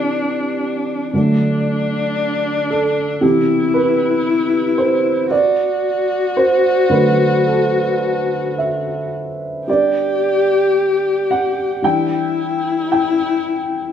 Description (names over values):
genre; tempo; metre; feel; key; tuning
celtic folk, Celtic slow air; 54-59 BPM; 4/4; rubato; unclear; A4 = 439 Hz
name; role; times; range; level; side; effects
dark viola; second line; 0.0-13.9 s; D4 to G4; -18 LUFS; left 4 dB; none
dark upright piano; accompaniment; 0.0-13.9 s; B2 to G5; -17 LUFS; right 2 dB; none
room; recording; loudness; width
wet large studio reverb, RT60 1.2 s; band playing live in one room; -15 LUFS; side -9 dB against mid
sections
0.0-13.9 A section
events
upright piano solo 0.0-13.9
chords
0.0 Cadd9; 1.1 D; 3.2 Cmaj7; 5.3 D; 9.7 G; 11.8 Em7